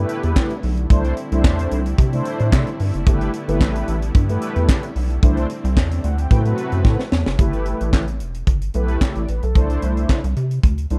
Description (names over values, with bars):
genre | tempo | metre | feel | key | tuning
early-eighties boogie funk | 111 BPM | 4/4 | straight | unclear | A4 = 440 Hz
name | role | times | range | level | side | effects
mellow synth brass | accompaniment | 0.0-11.0 s | A3 to G5 | -27 LUFS | equal | chorus
brassy analog pad | sustained chords | 0.0-7.4 s | C3 to B4 | -32 LUFS | equal | chorus
rubbery square bass | bass | 0.0-11.0 s | E1 to C3 | -23 LUFS | equal | none
tight funk drum kit | drums | 0.1-11.0 s | handclaps, hi-hat, kick drum, snare drum | -19 LUFS | equal | none
room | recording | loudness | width
little or no reverb | dark, warm production | -19 LUFS | mono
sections
0.0-7.4 A section; 7.4-11.0 B section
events
drum fill 6.8-7.4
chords
0.0 G69; 0.9 C69; 3.1 G69; 5.2 C69; 6.3 Am69; 7.4 G69; 9.6 C69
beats
0.36 | 0.90 1.44 1.99 2.52 | 3.07 3.61 4.15 4.69 | 5.23 5.77 6.31 6.85 | 7.39 7.93 8.47 9.01 | 9.55 10.09 10.63